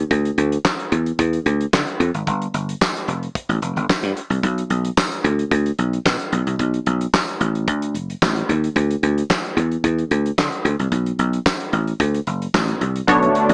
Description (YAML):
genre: early-eighties boogie funk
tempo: 111 BPM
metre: 4/4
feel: straight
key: unclear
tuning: A4 = 438 Hz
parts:
  - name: dry thumbed slap bass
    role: bass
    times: 0.0-13.5 s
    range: E#1 to D3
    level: -18 LUFS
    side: equal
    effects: none
  - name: damped 70s drum kit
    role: drums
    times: 0.1-13.5 s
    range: handclaps, hi-hat, kick drum, snare drum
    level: -21 LUFS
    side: equal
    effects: gated reverb
  - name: tambourine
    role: percussion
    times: 0.7-12.7 s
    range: none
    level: -33 LUFS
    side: equal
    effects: none
  - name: funky polysynth comp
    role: accompaniment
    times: 13.1-13.5 s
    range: B3 to C#5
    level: -14 LUFS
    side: equal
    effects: chorus
  - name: brassy analog pad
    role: sustained chords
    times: 13.1-13.5 s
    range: D3 to D4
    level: -18 LUFS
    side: equal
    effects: chorus
room: studio reverb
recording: small speaker sound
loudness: -17 LUFS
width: side -34 dB against mid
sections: 0.0-13.1 A section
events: none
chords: 0.1 Dsus2; 2.3 N.C.; 4.4 Bm7; 8.8 Dsus2; 10.9 Bm7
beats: | 0.11 0.65 1.19 1.73 | 2.27 2.81 3.35 3.89 | 4.43 4.97 5.51 6.05 | 6.59 7.14 7.68 8.22 | 8.76 9.30 9.84 10.38 | 10.92 11.46 12.00 12.54 | 13.08